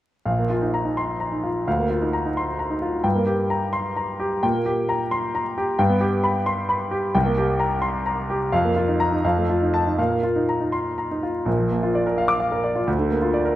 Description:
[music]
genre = classical, virtuoso piano study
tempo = 80-90 BPM (dotted quarters)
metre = 6/8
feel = rubato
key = Bb major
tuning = A4 = 442 Hz
[part]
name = clear grand piano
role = solo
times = 0.3-13.6 s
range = Bb1 to D6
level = -20 LUFS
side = equal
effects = none
[sound]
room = moderate large studio reverb, RT60 1.3 s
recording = vinyl crackle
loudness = -20 LUFS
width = side -14 dB against mid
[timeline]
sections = 0.3-11.5 A section; 11.5-13.6 A section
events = none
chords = 0.3 Bb5; 1.7 Bb/D; 3.0 Gm; 4.4 Gm/Bb; 5.8 G; 7.1 C5; 8.5 Bb5/F; 9.2 F7; 10.0 Bb5; 11.5 Bb; 12.9 Bb/D

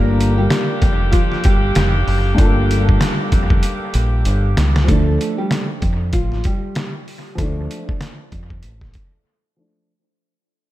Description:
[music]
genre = hip hop, boom-bap hip-hop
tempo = 96 BPM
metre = 4/4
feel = swing 60% on 16ths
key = unclear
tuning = A4 = 440 Hz
[part]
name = nylon-string guitar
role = melody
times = 0.0-6.9 s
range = F3 to Bb4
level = -24 LUFS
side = equal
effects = high-pass filter, low-pass filter, dub echo
[part]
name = dark baby grand piano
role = accompaniment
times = 0.0-9.9 s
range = G2 to Bb4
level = -24 LUFS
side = left 2 dB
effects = cassette tape, high-pass filter, low-pass filter, dub echo
[part]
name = clear saxophone section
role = stabs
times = 0.0-4.5 s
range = D3 to G4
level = -25 LUFS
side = right 1 dB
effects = high-pass filter, low-pass filter, dub echo
[part]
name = deep dub fingered electric bass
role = bass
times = 0.0-8.9 s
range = F1 to F2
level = -17 LUFS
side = equal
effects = none
[part]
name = trip hop sampler-style drum kit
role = drums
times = 0.2-9.1 s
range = hi-hat, kick drum, snare drum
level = -18 LUFS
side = equal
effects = none
[sound]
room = small room ambience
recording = echo-heavy mix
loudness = -14 LUFS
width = side -15 dB against mid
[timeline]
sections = 0.0-4.9 A section; 4.9-9.9 B section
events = drum fill 3.6-4.9; fade-out 4.9-9.9; break 9.3-9.9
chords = 0.0 Gm7; 4.9 Dm

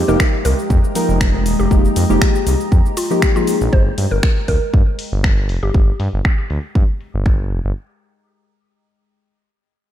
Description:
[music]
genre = deep house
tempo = 119 BPM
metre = 4/4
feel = swing 54% on 16ths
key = G minor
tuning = A4 = 440 Hz
[part]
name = deep dark ambient pad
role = sustained chords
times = 0.0-3.7 s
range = Ab3 to Bb5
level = -25 LUFS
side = left 1 dB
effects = chorus, built-in reverb, vintage 12-bit sampler grit, sidechain pumping
[part]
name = deep mellow chord stab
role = stabs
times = 0.0-3.7 s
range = F3 to Bb4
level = -19 LUFS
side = left 2 dB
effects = chorus, sidechain pumping, diffuse ambient delay
[part]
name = smooth synth bass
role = bass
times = 0.0-7.7 s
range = Eb1 to G2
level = -18 LUFS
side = equal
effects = sidechain pumping
[part]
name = mallet-like synth pluck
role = melody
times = 0.1-5.7 s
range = F4 to C5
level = -26 LUFS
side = right 1 dB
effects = chorus, diffuse ambient delay
[part]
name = house drum kit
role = drums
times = 0.1-7.6 s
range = finger snaps, hi-hat, shaker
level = -25 LUFS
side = left 1 dB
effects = low-pass filter on perc, studio reverb, low-pass filter on hats, low-pass filter on snare
[part]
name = electronic kick drum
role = drums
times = 0.2-7.4 s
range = none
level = -14 LUFS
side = equal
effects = studio reverb
[sound]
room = light reverb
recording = none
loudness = -14 LUFS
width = side -11 dB against mid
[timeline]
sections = 0.0-3.7 A section; 3.7-7.8 B section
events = drop 0.0-3.7; filter sweep on drum 3.7-7.8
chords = 0.0 Fm11; 3.7 G5

